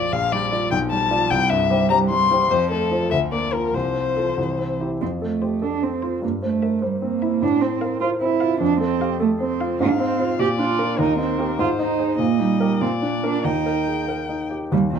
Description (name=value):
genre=quick classical-period movement for piano trio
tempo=93-102 BPM (dotted quarters)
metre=6/8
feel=rubato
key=F major, Eb major from 9.8 s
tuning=A4 = 440 Hz
part: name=muted violin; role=melody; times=0.0-14.5 s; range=A4 to C6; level=-23 LUFS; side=left 7 dB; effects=none
part: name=muted cello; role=second line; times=0.0-15.0 s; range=Eb3 to G4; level=-23 LUFS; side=right 7 dB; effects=none
part: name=clear baby grand piano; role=accompaniment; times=0.0-15.0 s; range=Bb1 to D5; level=-23 LUFS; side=left 1 dB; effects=none
room=moderate large studio reverb, RT60 0.8 s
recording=none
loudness=-19 LUFS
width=side -7 dB against mid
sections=0.0-5.0 A section; 5.0-14.7 B section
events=none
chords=0.1 Gm7/Bb; 0.7 G7/B; 1.3 C; 2.5 F; 3.1 Bb/D; 3.7 F/C; 4.4 C; 5.0 F; 6.2 C7/G; 7.4 F/A; 8.6 F; 9.8 Fm/Ab; 10.4 Bb; 11.0 Eb; 11.6 Ab; 12.2 Eb/Bb; 12.8 Bb; 13.4 Eb